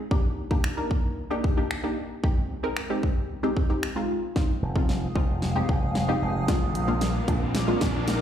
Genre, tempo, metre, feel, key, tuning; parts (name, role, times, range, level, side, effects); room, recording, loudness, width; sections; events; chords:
dance-pop; 113 BPM; 4/4; straight; F dorian; A4 = 440 Hz
analog pluck; accompaniment; 0.0-8.1 s; Ab3 to Bb4; -29 LUFS; equal; chorus, phaser, sidechain pumping, slapback echo
pop drum kit; drums; 0.1-8.2 s; finger snaps, hi-hat, kick drum, snare drum; -26 LUFS; equal
granular cloud pad; sustained chords; 5.1-8.2 s; Ab3 to Eb6; -33 LUFS; left 1 dB; built-in reverb, sidechain pumping
riser; sound effects; 5.1-8.2 s; -35 LUFS; right 1 dB; slapback echo
slap bass with an envelope filter; bass; 4.6-8.2 s; F1 to Bb1; -28 LUFS; equal; sidechain pumping
light reverb; live gig heard through the venue's PA, recital hall reverb; -23 LUFS; side -10 dB against mid
0.0-4.4 A section; 4.4-8.2 B section
build-up 4.4-8.2; drum fill 4.4-8.2; filter sweep 4.4-8.2; riser 5.1-8.2
0.1 Ebmaj7; 2.2 Abmaj7; 4.4 Fm7; 6.5 Bb7